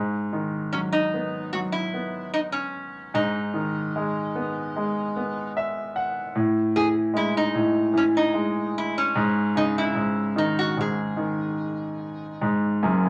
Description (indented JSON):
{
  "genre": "pop",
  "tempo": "74 BPM",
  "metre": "4/4",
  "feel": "straight",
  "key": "unclear",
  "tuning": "A4 = 439 Hz",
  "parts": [
    { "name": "bright concert grand piano", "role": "accompaniment", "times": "0.0-13.1 s", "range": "F#1 to F#5", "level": "-26 LUFS", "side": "equal", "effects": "none" },
    { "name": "metal-body resonator slide guitar", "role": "melody", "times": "0.7-12.4 s", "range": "C#4 to G#4", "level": "-29 LUFS", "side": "equal", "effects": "none" }
  ],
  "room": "wet small room reverb, RT60 0.5 s",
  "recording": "none",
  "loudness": "-25 LUFS",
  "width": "mono",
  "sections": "0.0-12.8 A section",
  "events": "grand piano fill 5.2-6.3",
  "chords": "0.0 G#m7; 6.3 A5; 9.2 G#sus4"
}